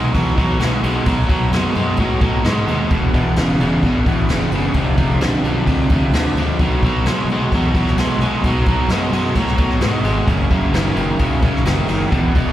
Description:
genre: blues rock power trio and southern rock.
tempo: 130 BPM.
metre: 4/4.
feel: straight.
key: B mixolydian.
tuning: A4 = 444 Hz.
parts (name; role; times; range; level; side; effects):
overdriven tonewheel organ; sustained chords; 0.0-12.5 s; D4 to D5; -29 LUFS; right 2 dB; slow rotary speaker.
crunchy overdriven guitar; riff; 0.0-12.5 s; E2 to G#3; -18 LUFS; equal; slapback echo.
fuzz fingered electric bass; bass; 0.0-12.5 s; E1 to A2; -20 LUFS; equal; overdrive.
jazz brush drum kit; drums; 0.1-12.5 s; kick drum, ride cymbal, snare drum; -20 LUFS; equal; none.
room: light reverb.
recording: live gig heard through the venue's PA, recital hall reverb.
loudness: -14 LUFS.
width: side -13 dB against mid.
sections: 0.0-12.5 A section.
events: none.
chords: 0.0 B7; 2.9 E7; 4.8 Fdim7; 6.6 B7; 10.3 F#7.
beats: 0.15 0.61 | 1.07 1.53 1.99 2.45 | 2.91 3.37 3.83 4.30 | 4.76 5.22 5.68 6.14 | 6.60 7.06 7.52 7.98 | 8.44 8.90 9.36 9.82 | 10.28 10.74 11.20 11.66 | 12.12.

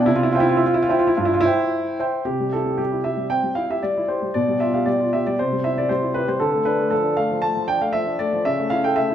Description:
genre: classical-period piano sonatina.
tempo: 116 BPM.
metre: 4/4.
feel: rubato.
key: C major.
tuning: A4 = 440 Hz.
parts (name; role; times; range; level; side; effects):
warm concert grand piano; solo; 0.0-9.1 s; G2 to A5; -18 LUFS; equal; none.
room: wet recital hall reverb, RT60 1.6 s.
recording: minimal, uncompressed stereo recording.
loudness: -18 LUFS.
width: side -10 dB against mid.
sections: 0.0-2.3 A section; 2.3-9.1 A section.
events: none.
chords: 0.1 C; 4.4 G7/B; 5.4 C; 6.4 Dm; 8.5 A/C#.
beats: | 0.06 0.62 1.17 1.72 | 2.27 2.79 3.31 3.83 | 4.35 4.87 5.38 5.90 | 6.41 6.92 7.42 7.94 | 8.46 8.96.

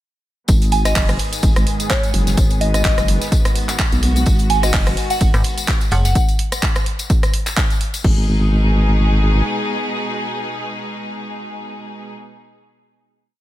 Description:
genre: bass house.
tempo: 127 BPM.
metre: 4/4.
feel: swing 56% on 16ths.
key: G# minor.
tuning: A4 = 440 Hz.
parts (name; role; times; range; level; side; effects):
bright symphonic string section; sustained chords; 0.5-12.1 s; G#2 to G#4; -25 LUFS; equal; sidechain pumping, low-pass filter.
vowel-sweep wobble bass; bass; 0.5-9.4 s; F#1 to B1; -16 LUFS; equal; chorus, sidechain pumping.
electronic kick drum; drums; 0.5-8.1 s; none; -17 LUFS; equal; none.
house drum kit; drums; 0.5-8.1 s; crash cymbal, handclaps, hi-hat, rim click; -23 LUFS; right 1 dB; none.
warm soul drum kit; drums; 0.5-6.1 s; hi-hat, snare drum, tambourine; -33 LUFS; right 1 dB; sidechain pumping on hats, high-pass filter on hats, high-pass filter on snare, sidechain pumping on perc, high-pass filter on perc, high-pass filter on room.
tambourine; percussion; 0.5-8.0 s; none; -29 LUFS; left 5 dB; none.
soft synth bell; melody; 0.7-6.1 s; C#5 to G#5; -24 LUFS; right 1 dB; chorus, phaser, digital delay.
metallic FM bass; bass; 5.3-6.1 s; F#1 to G#1; -15 LUFS; equal; sidechain pumping.
room: studio ambience.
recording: none.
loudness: -15 LUFS.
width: side -14 dB against mid.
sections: 0.5-8.0 drop; 8.0-11.8 final chord.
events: drop 0.5-8.0.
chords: 0.5 G#m.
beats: | 0.48 0.96 1.43 1.90 | 2.37 2.85 3.32 3.79 | 4.26 4.74 5.21 5.68 | 6.15 6.63 7.10 7.57 | 8.04 8.52 8.99 9.46 | 9.93 10.41 10.88 11.35.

